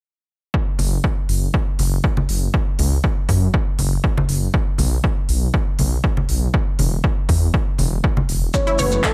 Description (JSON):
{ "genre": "progressive house", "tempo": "120 BPM", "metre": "4/4", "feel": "straight", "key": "F# minor", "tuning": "A4 = 441 Hz", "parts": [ { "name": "electronic kick drum", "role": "drums", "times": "0.5-9.1 s", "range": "none", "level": "-22 LUFS", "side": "equal", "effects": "overdrive" }, { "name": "dark detuned saw bass", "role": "bass", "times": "0.8-9.0 s", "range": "E1 to F#2", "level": "-22 LUFS", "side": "equal", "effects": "sidechain pumping" }, { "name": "big-room dance drum kit", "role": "drums", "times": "0.8-9.1 s", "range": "handclaps, hi-hat", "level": "-30 LUFS", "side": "equal", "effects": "overdrive, sidechain pumping on hats" }, { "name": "congas", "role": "percussion", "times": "0.8-8.9 s", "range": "none", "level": "-27 LUFS", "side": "equal", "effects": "sidechain pumping on perc" }, { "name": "soft octave-layered synth lead", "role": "melody", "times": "8.5-9.1 s", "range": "A4 to C#5", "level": "-22 LUFS", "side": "equal", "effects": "chorus, tremolo" }, { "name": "lush unison pad", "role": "sustained chords", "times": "8.5-9.1 s", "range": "E3 to F#4", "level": "-29 LUFS", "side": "equal", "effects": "chorus, sidechain pumping" }, { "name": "maracas", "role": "percussion", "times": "8.5-9.1 s", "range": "none", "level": "-32 LUFS", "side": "equal", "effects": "none" }, { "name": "unison pluck", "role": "arpeggios", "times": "8.7-9.1 s", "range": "E4 to C#5", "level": "-26 LUFS", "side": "equal", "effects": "sidechain pumping" } ], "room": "little or no reverb", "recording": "none", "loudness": "-19 LUFS", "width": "mono", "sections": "0.5-9.1 A section", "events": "none", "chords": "0.5 F#5; 4.5 N.C.; 8.5 F#m7" }